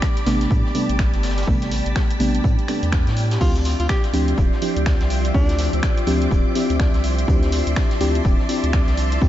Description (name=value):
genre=deep house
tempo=124 BPM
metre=4/4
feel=swing 60% on 16ths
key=D minor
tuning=A4 = 440 Hz
part: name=soft string machine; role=sustained chords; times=0.0-9.3 s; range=F3 to D6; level=-29 LUFS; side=equal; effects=ensemble chorus, sidechain pumping
part: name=deep mellow chord stab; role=stabs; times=0.0-9.3 s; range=C3 to G4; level=-24 LUFS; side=equal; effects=chorus, sidechain pumping, ping-pong delay
part: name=electronic kick drum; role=drums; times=0.0-9.3 s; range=none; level=-19 LUFS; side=equal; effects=none
part: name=punchy analog drum machine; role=drums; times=0.0-9.2 s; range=crash cymbal, finger snaps, hi-hat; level=-31 LUFS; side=right 1 dB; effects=none
part: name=vintage brush drum kit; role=drums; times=0.0-9.3 s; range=hi-hat, snare drum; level=-38 LUFS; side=equal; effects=none
part: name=string machine, violins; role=texture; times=0.0-9.3 s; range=D5 to B6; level=-33 LUFS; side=right 1 dB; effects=ensemble chorus, sidechain pumping
part: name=round analog bass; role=bass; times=0.3-9.3 s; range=D1 to A2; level=-22 LUFS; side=equal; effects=sidechain pumping
part: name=bright alto saxophone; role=melody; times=3.4-5.7 s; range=D4 to G4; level=-31 LUFS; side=left 1 dB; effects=ping-pong delay
room=light reverb, digital ambience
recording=nothing above 7.7 kHz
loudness=-17 LUFS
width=side -13 dB against mid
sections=0.0-9.3 A section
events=none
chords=0.0 Am11; 3.4 Dm11